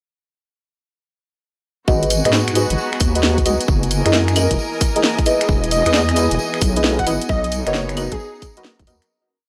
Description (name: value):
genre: UK garage, two-step garage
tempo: 133 BPM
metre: 4/4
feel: swing 66% on 16ths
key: G# minor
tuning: A4 = 441 Hz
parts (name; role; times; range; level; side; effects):
- ethereal airy pad; sustained chords; 2.8-9.1 s; A#3 to A#5; -32 LUFS; equal; none
- deep mellow chord stab; stabs; 1.9-9.1 s; E4 to D#5; -23 LUFS; equal; chorus, phaser, tape echo
- deep soft wobble bass; bass; 1.9-9.0 s; E1 to G#2; -23 LUFS; equal; chorus, tube saturation, sidechain pumping
- electronic kick drum; drums; 1.9-8.9 s; none; -22 LUFS; equal; none
- tambourine; percussion; 1.9-9.1 s; none; -32 LUFS; equal; none
- rich symphonic string section; texture; 1.9-9.1 s; E3 to A#5; -30 LUFS; equal; sidechain pumping
- garage drum kit; drums; 2.0-9.1 s; claves, finger snaps, hi-hat, snare drum; -23 LUFS; equal; none
- airy dreamy lead; melody; 5.7-8.4 s; G#4 to F#5; -26 LUFS; equal; chorus, tape echo
room: light reverb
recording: dry, gritty hardware recording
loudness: -18 LUFS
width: mono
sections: 1.9-9.1 drop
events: drop 1.9-9.1; fade-out 6.7-9.1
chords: 1.9 G#m7; 3.7 F#13; 5.5 Emaj7; 7.3 Bmaj7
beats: | 1.88 2.33 2.78 3.23 | 3.68 4.13 4.59 5.04 | 5.49 5.94 6.39 6.84 | 7.29 7.74 8.20 8.65